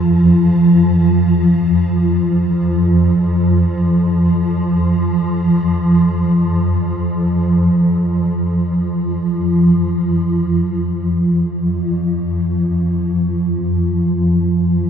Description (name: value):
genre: ambient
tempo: free time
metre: none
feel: none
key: unclear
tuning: A4 = 437 Hz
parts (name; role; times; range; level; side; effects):
- swarming drone; solo; 0.0-14.9 s; F2 to F3; -13 LUFS; equal; built-in reverb, ping-pong delay
room: wet cathedral reverb, RT60 5.4 s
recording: none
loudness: -13 LUFS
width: side -8 dB against mid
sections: 0.0-10.5 A section; 10.5-14.9 B section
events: none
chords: none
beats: free time